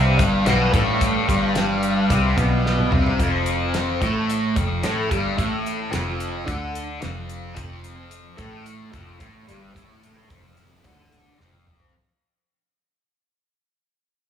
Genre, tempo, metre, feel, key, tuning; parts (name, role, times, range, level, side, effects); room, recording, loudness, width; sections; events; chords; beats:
psychedelic rock; 110 BPM; 4/4; straight; A4 = 439 Hz
combo organ; sustained chords; 0.0-3.1 s; G3 to B4; -27 LUFS; right 1 dB
fuzz guitar; riff; 0.0-11.9 s; F2 to D4; -22 LUFS; equal; distortion, phaser
fingered electric bass; bass; 0.0-11.9 s; F1 to D2; -25 LUFS; equal
damped 70s drum kit; drums; 0.2-11.9 s; hi-hat, kick drum, snare drum, toms; -24 LUFS; equal
light reverb, studio ambience; small room ambience; -19 LUFS; side -9 dB against mid
0.0-11.9 A section
fade-out 0.0-11.9; drum fill 2.6-3.2, 11.4-11.9
0.0 G; 3.2 F69
0.46 | 1.00 1.55 2.09 2.64 | 3.19 3.73 4.28 4.83 | 5.37 5.92 6.46 7.01 | 7.56 8.11 8.65 9.20 | 9.75 10.30 10.84 11.39